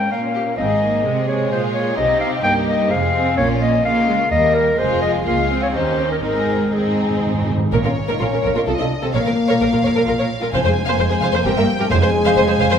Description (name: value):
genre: quick classical-period movement for symphony orchestra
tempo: 129 BPM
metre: 3/4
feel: rubato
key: Ab major, Bb minor from 7.7 s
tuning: A4 = 440 Hz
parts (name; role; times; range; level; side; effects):
- warm studio violin section; melody; 0.0-12.8 s; F4 to Ab5; -27 LUFS; left 4 dB; none
- warm clarinet; second line; 0.0-7.2 s; Ab4 to G5; -19 LUFS; left 2 dB; none
- warm studio violin section; second line; 0.0-12.8 s; Bb3 to F5; -24 LUFS; left 2 dB; none
- rich studio viola section; accompaniment; 0.0-12.7 s; G3 to C5; -23 LUFS; right 2 dB; none
- rich studio cello section; bass; 0.0-12.8 s; Db2 to Db3; -24 LUFS; right 3 dB; none
- rich studio double bass section; bass; 0.6-12.6 s; F1 to Eb2; -25 LUFS; right 3 dB; none
- timpani; percussion; 6.2-7.6, 10.5-12.5 s; F2 to Ab2; -25 LUFS; equal; none
- mellow French horn section; sustained chords; 7.7-12.8 s; F3 to F4; -20 LUFS; left 2 dB; none
room: wet scoring stage reverb, RT60 1.6 s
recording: minimal, uncompressed stereo recording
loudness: -15 LUFS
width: side -8 dB against mid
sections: 0.0-7.7 A section; 7.7-12.8 B section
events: timpani fill 6.2-7.7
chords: 0.0 Eb7 (rootless); 0.6 Ab; 2.0 Cm; 2.9 Fm; 3.4 Bbm; 4.3 Eb; 4.8 Fm; 5.3 Bbm7/Db; 5.7 Eb7; 6.2 Ab; 7.7 Bbm; 8.7 Adim/C; 9.1 Bb5; 10.5 Fm; 11.4 Edim/G (rootless); 11.9 Fm